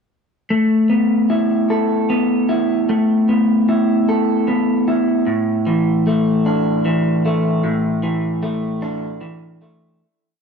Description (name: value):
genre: rock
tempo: 50 BPM (dotted quarters)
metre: 6/8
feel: straight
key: unclear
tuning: A4 = 440 Hz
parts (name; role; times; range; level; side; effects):
- electric guitar through a small old amp; solo; 0.5-10.0 s; A2 to A4; -15 LUFS; equal; spring reverb, tape echo
room: moderate lush hall reverb, RT60 2.0 s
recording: none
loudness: -15 LUFS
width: side -6 dB against mid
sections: 0.5-10.0 A section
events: fade-out 7.6-10.0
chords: 0.5 Asus2; 5.3 Dsus2/A